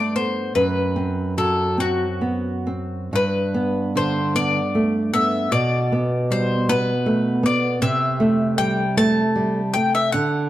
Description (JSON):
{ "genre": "romantic duo for mandolin and classical guitar", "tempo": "43-53 BPM (dotted quarters)", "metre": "6/8", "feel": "rubato", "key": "G major", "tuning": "A4 = 440 Hz", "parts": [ { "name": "bowl-back mandolin", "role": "melody", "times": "0.0-10.5 s", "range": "F#4 to A5", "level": "-23 LUFS", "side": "left 3 dB", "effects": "none" }, { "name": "nylon-string guitar", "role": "accompaniment", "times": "0.0-10.5 s", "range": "F#2 to C4", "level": "-20 LUFS", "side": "right 1 dB", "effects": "none" } ], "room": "moderate spring reverb, RT60 1.3 s", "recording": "none", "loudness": "-18 LUFS", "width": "side -14 dB against mid", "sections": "0.0-10.5 A section", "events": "none", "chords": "0.0 G; 0.6 F#(b5, no3); 3.1 G; 5.5 G/B; 7.8 Am7/C" }